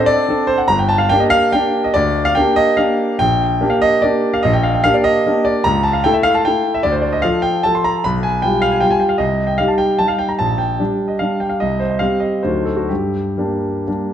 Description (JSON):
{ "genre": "classical, piano waltz", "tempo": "121-163 BPM", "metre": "3/4", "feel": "rubato", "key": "G minor", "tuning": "A4 = 440 Hz", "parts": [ { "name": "clear grand piano", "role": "solo", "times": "0.0-14.1 s", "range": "G1 to C6", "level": "-14 LUFS", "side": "equal", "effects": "none" } ], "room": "wet recital hall reverb, RT60 1.4 s", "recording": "dark, warm production", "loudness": "-14 LUFS", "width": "side -9 dB against mid", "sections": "0.0-14.1 A section", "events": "none", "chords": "0.0 D7; 0.7 Gm; 3.2 Gm/Bb; 5.6 A/C#; 6.8 Dm; 8.1 G7/B; 9.2 Cm; 10.4 Gm/Bb; 11.6 C5; 12.4 D7b9; 12.9 Gm", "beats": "0.28 | 0.68 1.10 1.53 | 1.95 2.36 2.79 | 3.20 3.61 4.03 | 4.43 4.84 5.25 | 5.65 6.04 6.45 | 6.84 7.24 7.65 | 8.05 8.43 8.82 | 9.20 9.59 9.99 | 10.40 10.80 11.20 | 11.61 12.01 12.44 | 12.90 13.37 13.87" }